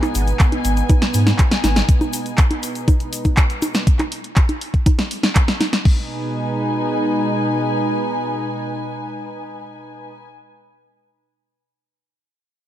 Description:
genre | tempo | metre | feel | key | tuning
acid house | 121 BPM | 4/4 | straight | G# minor | A4 = 438 Hz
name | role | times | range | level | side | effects
warm analog pad | sustained chords | 0.0-10.1 s | B2 to D#4 | -25 LUFS | right 2 dB | chorus, sidechain pumping
punchy analog drum machine | drums | 0.0-6.0 s | congas, crash cymbal, handclaps, hi-hat, snare drum | -21 LUFS | equal | none
egg shaker | percussion | 0.0-3.8 s | none | -33 LUFS | left 6 dB | none
dark studio string section | texture | 0.0-10.3 s | D#4 to G#5 | -26 LUFS | left 2 dB | sidechain pumping
saturated sub bass | bass | 0.2-1.8 s | G#1 to G#2 | -17 LUFS | equal | sidechain pumping
electronic kick drum | drums | 0.4-6.0 s | none | -14 LUFS | equal | none
room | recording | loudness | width
light reverb | dark, warm production | -16 LUFS | side -12 dB against mid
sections
0.0-5.9 A section; 5.9-9.8 B section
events
drop 0.0-5.9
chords
0.0 G#m

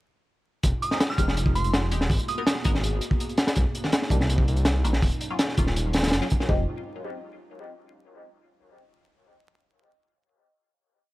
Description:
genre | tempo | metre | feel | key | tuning
drum and bass, jungle | 164 BPM | 4/4 | straight | unclear | A4 = 438 Hz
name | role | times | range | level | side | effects
airy breathy pad | sustained chords | 0.7-6.7 s | Gb3 to Ab4 | -36 LUFS | right 1 dB | chorus
dark detuned saw bass | bass | 0.6-6.7 s | Eb1 to C2 | -25 LUFS | equal | none
crunchy breakbeat drum kit | drums | 0.6-6.6 s | hi-hat, kick drum, snare drum | -24 LUFS | equal | none
glassy synth bell | melody | 0.8-2.8 s | C6 to F6 | -32 LUFS | right 3 dB | chorus, dub echo
filtered dub chord stab | stabs | 0.9-6.6 s | Eb3 to Bb4 | -35 LUFS | left 2 dB | phaser, dub echo
room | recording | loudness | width
studio reverb | vinyl crackle | -22 LUFS | side -18 dB against mid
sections
0.6-6.5 drop; 6.5-8.0 final chord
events
drop 0.6-6.5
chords
0.6 Fm9; 2.1 Abm9; 3.6 Cm9; 5.0 Ebm9; 6.5 Fm9

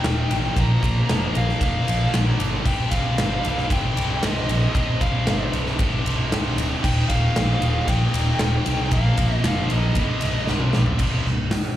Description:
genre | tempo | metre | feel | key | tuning
hard rock | 115 BPM | 4/4 | straight | C minor | A4 = 440 Hz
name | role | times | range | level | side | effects
nasal lead guitar with a parked wah | melody | 0.0-10.5 s | C5 to Bb5 | -29 LUFS | left 1 dB | overdrive, slapback echo
heavy high-gain guitar | riff | 0.0-11.5 s | C2 to Bb3 | -28 LUFS | equal | distortion
heavy high-gain guitar | riff | 0.0-11.5 s | C2 to Bb3 | -30 LUFS | equal | distortion, slapback echo
huge arena drum kit | drums | 0.0-11.6 s | crash cymbal, hi-hat, kick drum, ride cymbal, snare drum, toms | -23 LUFS | equal | none
fingered electric bass | bass | 0.1-11.5 s | C1 to C2 | -23 LUFS | equal | none
room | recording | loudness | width
small room ambience | live gig heard through the venue's PA, club reverb | -19 LUFS | side -12 dB against mid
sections
0.0-11.0 A section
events
drum fill 10.5-11.0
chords
0.0 Eb; 0.6 Bb5; 2.7 C5; 6.8 Eb; 8.9 Bb5; 10.0 Cm; 11.0 C5

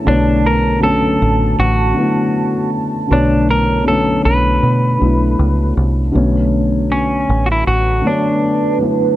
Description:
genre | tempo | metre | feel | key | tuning
lo-fi hip hop | 79 BPM | 4/4 | swing 57% on 16ths | unclear | A4 = 441 Hz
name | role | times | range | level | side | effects
felt-muted upright piano | accompaniment | 0.0-9.2 s | D3 to C#5 | -16 LUFS | left 1 dB | cassette tape, low-pass filter
deep dark ambient pad | sustained chords | 0.0-9.2 s | B4 to A5 | -25 LUFS | right 8 dB | chorus, built-in reverb, low-pass filter
semi-hollow electric guitar | melody | 0.1-8.8 s | C#4 to B4 | -18 LUFS | equal | low-pass filter, analog delay
deep dub fingered electric bass | bass | 0.1-8.0 s | A1 to B2 | -16 LUFS | equal | none
room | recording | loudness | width
light reverb, digital ambience | none | -12 LUFS | side -14 dB against mid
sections
0.0-6.1 A section; 6.1-9.2 B section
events
none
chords
0.0 Bm9

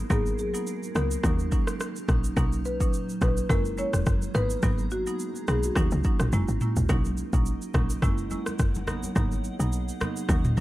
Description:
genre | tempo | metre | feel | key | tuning
afrobeats | 106 BPM | 4/4 | swing 55% on 16ths | G# minor | A4 = 439 Hz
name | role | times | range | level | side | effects
marimba with medium mallets | melody | 0.0-6.6 s | F#4 to C#5 | -32 LUFS | left 2 dB | digital delay
granular cloud pad | sustained chords | 0.0-10.6 s | D#4 to A#5 | -39 LUFS | right 1 dB | built-in reverb
woody log drum bass | bass | 0.0-10.6 s | E1 to D#2 | -27 LUFS | equal | none
marimba with hard mallets | accompaniment | 0.1-10.6 s | A#2 to E4 | -32 LUFS | right 3 dB | none
afro-pop drum kit | drums | 0.1-10.6 s | kick drum, rim click, shaker, toms | -27 LUFS | equal | none
congas | percussion | 6.9-10.6 s | none | -36 LUFS | left 1 dB | none
room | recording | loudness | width
studio reverb | dark, warm production | -24 LUFS | side -16 dB against mid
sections
0.0-6.9 A section; 6.9-10.6 B section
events
drum fill 6.3-6.9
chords
0.0 G#m7; 1.2 D#m7; 2.4 Bmaj7; 3.5 F#7; 4.3 G#m7; 5.8 D#m7; 6.3 F#7; 6.9 Bmaj7; 8.0 F#7; 8.9 G#m7

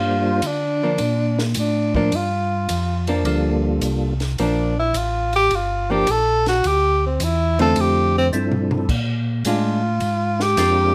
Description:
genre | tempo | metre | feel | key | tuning
soul jazz organ trio | 106 BPM | 4/4 | swing 69% on 8ths | unclear | A4 = 440 Hz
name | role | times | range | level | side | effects
percussive tonewheel organ | melody | 0.0-4.1, 8.3-10.9 s | F3 to C5 | -25 LUFS | equal | slow rotary speaker, chorus vibrato
warm tenor saxophone | melody | 0.0-10.9 s | Bb3 to A4 | -22 LUFS | equal | none
mellow tonewheel organ | bass | 0.0-10.9 s | G1 to D3 | -25 LUFS | equal | chorus vibrato, slow rotary speaker
compact cocktail drum kit | drums | 0.4-10.8 s | crash cymbal, hi-hat, kick drum, ride cymbal, snare drum, toms | -32 LUFS | equal | none
archtop guitar, miked and amplified | accompaniment | 0.8-9.8 s | D3 to F4 | -24 LUFS | equal | none
room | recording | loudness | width
moderate studio reverb, RT60 0.6 s | none | -20 LUFS | mono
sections
0.0-10.9 A section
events
tenor saxophone solo 0.0-10.9; drum fill 8.3-8.9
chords
0.0 Gm7; 6.6 Dm7; 8.9 Bb7

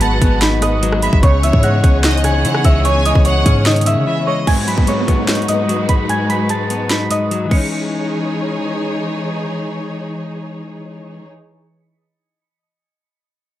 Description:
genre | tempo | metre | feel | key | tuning
hip hop, trap | 148 BPM | 4/4 | half-time | C# minor | A4 = 440 Hz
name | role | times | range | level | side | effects
soft synth bell | melody | 0.0-8.9 s | C#5 to C#7 | -20 LUFS | right 1 dB | chorus, low-pass filter
rich studio violin section | second line | 0.0-4.5 s | C#5 to G#5 | -25 LUFS | right 1 dB | tape echo
direct-recorded clean electric guitar | accompaniment | 0.0-11.3 s | G#2 to D#4 | -20 LUFS | left 3 dB | spring reverb, low-pass filter
warm studio string section | sustained chords | 0.0-11.3 s | C#3 to C#5 | -23 LUFS | equal | none
warm 808-style bass | bass | 0.0-4.1 s | G#1 to C#3 | -16 LUFS | equal | none
trap drum kit | drums | 0.0-7.6 s | crash cymbal, hi-hat, kick drum, rim click, snare drum | -16 LUFS | equal | none
downlifter | sound effects | 4.5-7.7 s | none | -26 LUFS | right 3 dB | none
room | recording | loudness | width
little or no reverb | none | -13 LUFS | side -13 dB against mid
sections
0.0-4.5 A section; 4.5-7.7 B section; 7.7-11.0 C section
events
break 4.1-4.5; kick muted 6.1-7.7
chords
0.0 G#m7; 1.2 C#madd9; 4.5 G#m7; 7.5 C#madd9

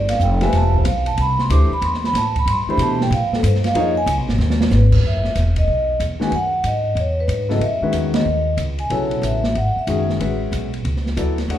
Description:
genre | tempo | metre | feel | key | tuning
modal jazz | 186 BPM | 4/4 | swing 64% on 8ths | F# minor from 5.0 s | A4 = 440 Hz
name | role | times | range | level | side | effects
vibraphone with medium mallets | melody | 0.0-10.1 s | A4 to D6 | -21 LUFS | right 1 dB | none
upright bass | bass | 0.0-11.6 s | E1 to B2 | -19 LUFS | equal | none
open jazz drum kit | drums | 0.1-11.6 s | crash cymbal, hi-hat, kick drum, ride cymbal, snare drum | -25 LUFS | right 1 dB | none
warm concert grand piano | accompaniment | 0.4-3.9, 6.2-11.6 s | C#3 to F#5 | -24 LUFS | left 3 dB | none
room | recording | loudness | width
moderate large studio reverb, RT60 1.2 s | band playing live in one room | -16 LUFS | side -11 dB against mid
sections
0.0-5.0 A section; 5.0-11.6 B section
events
vibraphone solo 0.0-5.0; drum fill 4.4-4.7; band accent 8.1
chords
0.0 G13sus4; 3.7 C#9; 5.0 F#13sus4; 10.2 E13sus4

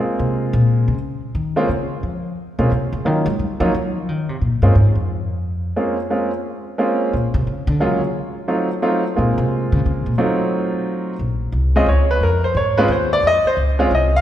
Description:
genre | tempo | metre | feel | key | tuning
jazz piano trio | 176 BPM | 3/4 | swing 65% on 8ths | Bb minor | A4 = 440 Hz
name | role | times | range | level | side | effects
clear baby grand piano | melody | 0.0-14.2 s | Gb3 to F5 | -19 LUFS | right 1 dB | none
upright bass | bass | 0.2-14.2 s | Bb1 to Ab3 | -18 LUFS | equal | none
room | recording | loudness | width
moderate scoring stage reverb, RT60 2.1 s | recorded in a church or concert hall | -16 LUFS | side -12 dB against mid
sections
0.0-11.2 A section; 11.2-14.2 A section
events
upright bass solo 0.0-11.2; grand piano solo 11.2-14.2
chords
0.0 Bbm9; 3.0 Ebm7; 4.1 Bbm9; 7.1 Gb (rootless); 8.1 F7b9; 9.2 Bbm9; 10.2 F7b9; 11.2 Bbm9

